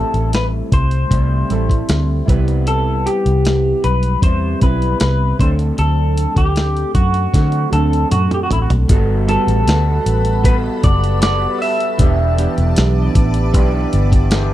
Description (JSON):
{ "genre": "indie pop, bedroom pop", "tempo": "77 BPM", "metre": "4/4", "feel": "straight", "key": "G major", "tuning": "A4 = 442 Hz", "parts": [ { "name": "electric guitar through a small old amp", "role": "melody", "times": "0.0-13.1 s", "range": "E4 to E5", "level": "-20 LUFS", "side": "left 1 dB", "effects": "analog chorus, slapback echo" }, { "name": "electric guitar through a small old amp", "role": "accompaniment", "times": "0.0-14.5 s", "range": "A2 to A4", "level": "-25 LUFS", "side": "left 2 dB", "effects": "lush chorus, warbly pitch drift" }, { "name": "warbly lo-fi synth keys", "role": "accompaniment", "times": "0.0-14.5 s", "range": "E3 to B4", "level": "-24 LUFS", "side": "right 6 dB", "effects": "chorus, phaser, cassette tape" }, { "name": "vintage muted fingered electric bass", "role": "bass", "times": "0.0-14.5 s", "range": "E1 to D3", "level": "-16 LUFS", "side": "equal", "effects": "none" }, { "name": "dusty soul sampler-style drum kit", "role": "drums", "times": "0.1-14.5 s", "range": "hi-hat, kick drum, snare drum, toms", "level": "-16 LUFS", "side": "equal", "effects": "none" }, { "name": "granular cloud pad", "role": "sustained chords", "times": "9.6-14.5 s", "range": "A4 to D6", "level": "-28 LUFS", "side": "right 1 dB", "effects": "built-in reverb" } ], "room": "little or no reverb", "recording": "dry, close 1970s-style studio recording", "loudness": "-13 LUFS", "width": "side -13 dB against mid", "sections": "0.0-8.9 A section; 8.9-14.5 B section", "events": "drum fill 7.3-8.9", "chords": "0.0 Am7; 2.3 Cmaj7; 5.4 D7; 8.9 Gmaj9; 12.0 Em7" }